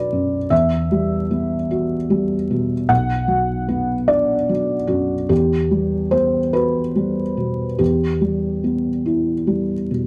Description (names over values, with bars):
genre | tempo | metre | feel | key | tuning
neoclassical minimalist piano | 49 BPM (dotted quarters) | 6/8 | uneven beats, rubato | E minor | A4 = 439 Hz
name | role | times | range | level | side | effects
felt-muted upright piano | solo | 0.0-10.1 s | B1 to F#5 | -20 LUFS | equal | none
room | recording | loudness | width
moderate studio reverb, RT60 0.6 s | close, detailed microphones, vinyl crackle | -20 LUFS | mono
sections
0.0-10.1 A section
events
none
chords
0.0 Bm; 0.5 Emadd9; 2.9 Bm; 5.3 Emadd9; 7.8 Em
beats
| 0.51 1.71 | 2.90 4.10 | 5.31 6.55 | 7.80 9.06